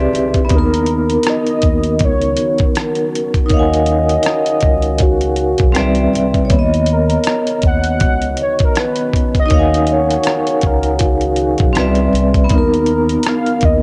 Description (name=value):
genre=lo-fi hip hop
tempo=80 BPM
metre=4/4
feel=swing 59% on 16ths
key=unclear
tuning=A4 = 441 Hz
part: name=warm velvety synth lead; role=melody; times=0.0-13.8 s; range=F4 to F#5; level=-22 LUFS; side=equal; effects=chorus, cassette tape
part: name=vibraphone with medium hard mallets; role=accompaniment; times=0.0-13.8 s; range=G3 to Ab5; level=-19 LUFS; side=equal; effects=cassette tape
part: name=deep dark ambient pad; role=sustained chords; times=0.0-13.8 s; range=D#3 to A#4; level=-29 LUFS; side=equal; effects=chorus, built-in reverb, cassette tape
part: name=upright bass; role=bass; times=0.0-13.8 s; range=Cb2 to D#2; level=-21 LUFS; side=equal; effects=none
part: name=dusty soul sampler-style drum kit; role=drums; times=0.1-13.8 s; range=hi-hat, kick drum, rim click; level=-19 LUFS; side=equal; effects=cassette tape
room=light reverb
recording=home recording on cassette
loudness=-15 LUFS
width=mono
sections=0.0-13.8 A section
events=none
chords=0.0 Cmaj9; 0.5 Bmaj9/D#; 3.5 Ebm11; 5.8 Cmaj9; 6.5 Bmaj9/D#; 9.5 Ebm11; 11.8 Cmaj9; 12.5 Bmaj9/D#